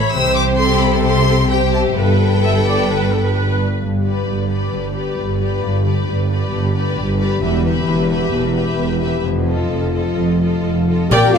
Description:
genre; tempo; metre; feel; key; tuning
cinematic, heroic adventure film score; 132 BPM; 4/4; straight; G major; A4 = 439 Hz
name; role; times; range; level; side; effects
warm symphonic violin section; melody; 0.0-11.4 s; D5 to E6; -25 LUFS; left 3 dB; none
warm symphonic viola section; accompaniment; 0.0-11.4 s; F4 to E5; -24 LUFS; right 2 dB; none
concert harp; arpeggios; 0.0-11.4 s; E2 to E5; -22 LUFS; left 8 dB; none
warm symphonic violin section; second line; 0.1-11.4 s; G4 to G5; -23 LUFS; left 4 dB; none
dark symphonic cello section; bass; 0.1-11.4 s; E2 to C3; -21 LUFS; right 2 dB; none
rich chamber double bass section; bass; 0.1-11.4 s; E1 to C2; -20 LUFS; right 3 dB; none
clear oboe; second line; 11.1-11.3 s; G5; -23 LUFS; right 2 dB; none
mellow hollow concert flute; second line; 11.1-11.4 s; F5 to G5; -22 LUFS; equal; none
dark trombone section; sustained chords; 11.1-11.4 s; F2 to Bb3; -24 LUFS; right 7 dB; none
mellow French horn section; sustained chords; 11.1-11.4 s; F4 to G4; -16 LUFS; left 7 dB; none
mellow trumpet section; stabs; 11.1-11.4 s; D5; -23 LUFS; right 4 dB; none
clash cymbals, concert bass drum and concert snare drum; drums; 11.1-11.4 s; none; -19 LUFS; left 1 dB; none
room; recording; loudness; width
moderate scoring stage reverb, RT60 1.9 s; none; -14 LUFS; side -6 dB against mid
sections
0.0-3.8 A section; 3.8-11.1 B section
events
none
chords
0.1 C; 2.0 Gadd9; 3.8 G; 7.4 Em; 9.2 F7

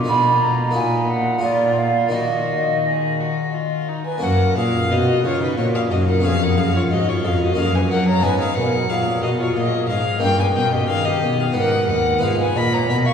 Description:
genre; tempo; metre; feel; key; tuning
classical, baroque-style sonata movement with continuo; 90 BPM; 3/4; straight; Eb minor, F# major from 4.2 s; A4 = 440 Hz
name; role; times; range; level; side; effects
rich violin; melody; 0.0-13.1 s; Eb4 to Db6; -24 LUFS; left 4 dB; none
harpsichord; accompaniment; 0.0-13.1 s; D#2 to Ab4; -24 LUFS; equal; none
rich cello; bass; 0.0-13.1 s; D#2 to F#3; -21 LUFS; equal; none
bright baroque flute; second line; 0.1-13.1 s; D#4 to Cb6; -22 LUFS; right 2 dB; none
room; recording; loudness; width
wet cathedral reverb, RT60 4.5 s; heard from further back in the room, small room ambience; -16 LUFS; side -7 dB against mid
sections
0.0-4.2 A section; 4.2-13.1 A section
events
none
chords
0.1 Abm/Cb; 0.8 Ebm/Bb; 1.4 Bb7; 2.1 Ebm; 4.2 F#; 6.2 C#7/E#; 7.6 F#; 8.2 G#m; 10.2 D#7/G; 11.6 G#m; 12.2 Fm7b5/Ab

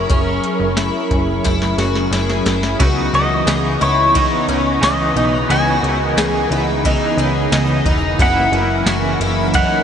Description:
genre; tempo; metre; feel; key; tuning
dream pop; 89 BPM; 4/4; straight; C# dorian; A4 = 440 Hz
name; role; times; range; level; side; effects
pedal steel guitar; melody; 0.0-9.8 s; C#5 to G#5; -20 LUFS; equal; wide subtle chorus, ping-pong delay
hollow soft pad; sustained chords; 0.0-9.8 s; C#3 to D#5; -21 LUFS; equal; ensemble chorus
picked twelve-string acoustic guitar; arpeggios; 0.0-9.8 s; C#4 to G#4; -21 LUFS; left 2 dB; analog chorus, ping-pong delay
plucky analog bass; bass; 0.0-9.6 s; E1 to C#2; -21 LUFS; equal; none
backwards swelling texture; texture; 0.0-9.8 s; G#4 to G#5; -29 LUFS; equal; built-in reverb, ping-pong delay
soft vintage rhythm box; drums; 0.1-9.7 s; hi-hat, kick drum, ride cymbal, snare drum, tambourine; -22 LUFS; equal; none
twelve-string electric guitar; accompaniment; 2.8-9.8 s; F#2 to E4; -23 LUFS; right 3 dB; tremolo, analog chorus
room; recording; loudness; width
wet huge ambient reverb, RT60 7.5 s; dreamy mix soaked in reverb, nothing above 10.5 kHz; -14 LUFS; side -8 dB against mid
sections
0.0-2.8 A section; 2.8-9.8 B section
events
drum fill 1.5-2.8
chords
0.0 F#7; 2.8 C#m9

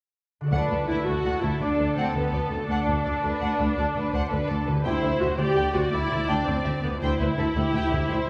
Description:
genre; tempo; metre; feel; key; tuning
cinematic; 111 BPM (dotted quarters); 12/8; straight; D mixolydian; A4 = 438 Hz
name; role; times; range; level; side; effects
concert harp; arpeggios; 0.4-8.3 s; D3 to D5; -36 LUFS; equal; none
warm symphonic violin section; melody; 0.5-8.3 s; A4 to G5; -37 LUFS; equal; none
rich symphonic violin section; second line; 0.5-8.3 s; G4 to D5; -35 LUFS; equal; none
rich symphonic viola section; accompaniment; 0.5-8.3 s; A3 to G4; -29 LUFS; equal; none
rich studio double bass section; bass; 0.5-8.3 s; D2; -32 LUFS; equal; none
rich symphonic cello section; bass; 0.5-8.3 s; D2; -33 LUFS; equal; none
timpani; percussion; 0.5-1.0 s; D3; -36 LUFS; equal; none
room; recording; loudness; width
wet recital hall reverb, RT60 1.6 s; recorded in a church or concert hall; -25 LUFS; mono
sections
0.5-8.3 A section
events
none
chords
0.5 D; 4.9 C/D

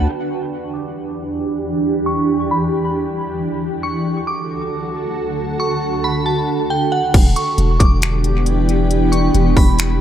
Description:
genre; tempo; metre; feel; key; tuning
hip hop, atmospheric cloud-rap; 136 BPM; 4/4; half-time; E dorian; A4 = 440 Hz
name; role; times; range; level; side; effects
glassy synth bell; melody; 0.0-10.0 s; F#5 to D6; -24 LUFS; right 1 dB; chorus, phaser, low-pass filter, dub echo
granular cloud pad; sustained chords; 0.0-10.0 s; D2 to A4; -19 LUFS; right 1 dB; built-in reverb, low-pass filter
long sustained 808-style bass; bass; 0.0-0.1, 7.1-10.0 s; E1; -16 LUFS; equal; none
trap drum kit; drums; 7.1-9.9 s; crash cymbal, finger snaps, hi-hat, kick drum; -15 LUFS; equal; none
room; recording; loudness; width
light reverb, digital ambience; echo-heavy mix; -15 LUFS; side -10 dB against mid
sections
0.1-7.1 A section; 7.1-10.0 B section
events
filter sweep 0.1-7.1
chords
0.1 Em7; 3.6 D; 7.1 Em7

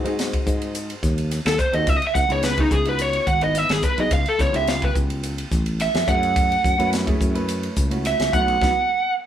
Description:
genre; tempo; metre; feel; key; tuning
electric jazz fusion; 107 BPM; 4/4; straight; C# minor; A4 = 438 Hz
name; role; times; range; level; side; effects
warm grand piano; accompaniment; 0.0-8.7 s; A3 to B4; -28 LUFS; equal; none
sustaining fretless electric bass; bass; 0.0-8.7 s; G#1 to G#2; -25 LUFS; equal; none
crisp fusion drum kit; drums; 0.1-8.8 s; hi-hat, kick drum, ride cymbal, snare drum; -24 LUFS; equal; none
lead guitar through a small cranked amp; melody; 1.5-9.1 s; D#4 to F#5; -20 LUFS; right 2 dB; overdrive
room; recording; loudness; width
moderate studio reverb, RT60 0.6 s; band playing live in one room; -18 LUFS; side -10 dB against mid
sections
0.0-9.3 A section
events
lead electric guitar solo 0.0-9.3; band accent 8.6-9.3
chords
0.0 G#7; 1.9 C#m9; 4.1 C#7alt; 6.1 F#m9; 8.3 B7sus4

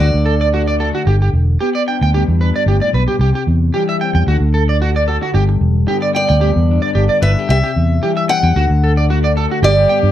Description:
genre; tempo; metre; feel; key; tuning
highlife; 112 BPM; 4/4; swing 53% on 16ths; G major; A4 = 444 Hz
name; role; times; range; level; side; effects
picked acoustic archtop guitar; melody; 0.0-0.8, 6.2-10.1 s; D5 to F#5; -18 LUFS; equal; none
electric guitar at the edge of break-up; accompaniment; 0.0-10.1 s; G2 to G4; -21 LUFS; left 9 dB; none
electric guitar at the edge of break-up; arpeggios; 0.0-10.0 s; F#4 to G5; -19 LUFS; right 3 dB; wide subtle chorus, slapback echo
vintage muted fingered electric bass; bass; 0.0-10.1 s; E1 to G2; -14 LUFS; equal; none
clear trumpet; second line; 9.6-10.1 s; G4; -23 LUFS; left 16 dB; none
room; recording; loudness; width
little or no reverb; dry, close 1970s-style studio recording; -12 LUFS; side -12 dB against mid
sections
0.0-9.6 A section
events
none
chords
0.0 D; 1.1 G; 3.2 C; 4.3 D; 5.4 G; 7.5 C; 8.6 D

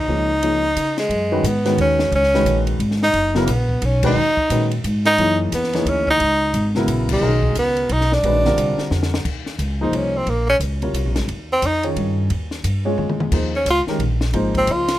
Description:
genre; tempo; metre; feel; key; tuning
modal jazz; 177 BPM; 3/4; swing 62% on 8ths; F# mixolydian, Eb mixolydian from 9.3 s; A4 = 440 Hz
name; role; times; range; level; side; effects
breathy tenor saxophone; melody; 0.0-15.0 s; Ab3 to F4; -18 LUFS; equal; none
upright bass; bass; 0.0-15.0 s; F#1 to Db3; -21 LUFS; equal; none
warm baby grand piano; accompaniment; 0.1-14.8 s; C3 to Db5; -23 LUFS; left 1 dB; none
compact cocktail drum kit; drums; 0.4-14.9 s; crash cymbal, hi-hat, kick drum, ride cymbal, snare drum, toms; -28 LUFS; left 2 dB; none
room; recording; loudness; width
little or no reverb; close, detailed microphones; -16 LUFS; side -14 dB against mid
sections
0.0-1.1 A section; 1.1-9.3 B section; 9.3-15.0 C section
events
band accent 4.0, 7.0; drum fill 8.9-9.3, 13.0-13.3; tenor saxophone solo 9.3-15.0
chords
0.1 Db69; 1.1 F#sus24; 3.1 G#m7/F#; 5.2 F#13sus4; 7.2 G#m7; 8.2 A#9; 9.3 Eb13sus4; 11.3 Dbadd9(#11)/Eb; 13.3 Eb13sus4

